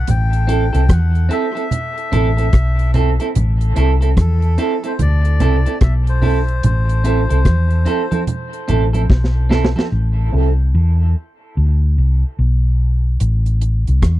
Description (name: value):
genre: dub reggae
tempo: 73 BPM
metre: 4/4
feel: swing 62% on 16ths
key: A dorian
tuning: A4 = 440 Hz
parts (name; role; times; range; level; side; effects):
- melodica; melody; 0.0-8.2 s; A4 to G5; -27 LUFS; left 4 dB; dub echo
- hollow-body short-scale fingered electric bass; bass; 0.0-14.2 s; A1 to E2; -14 LUFS; equal; none
- deep reggae drum kit; drums; 0.1-14.2 s; hi-hat, kick drum, rim click, snare drum; -16 LUFS; equal; none
- congas; percussion; 0.1-9.9 s; none; -23 LUFS; right 3 dB; none
- clean electric guitar; accompaniment; 0.5-10.5 s; C4 to A4; -22 LUFS; right 5 dB; low-pass filter, dub echo
room: little or no reverb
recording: dry, close 1970s-style studio recording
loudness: -13 LUFS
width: side -15 dB against mid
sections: 0.0-9.9 A section; 9.9-14.2 B section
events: drum fill 9.1-9.9; part muted 9.9-13.2; filter sweep on clean electric guitar 9.9-14.2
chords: 0.0 Am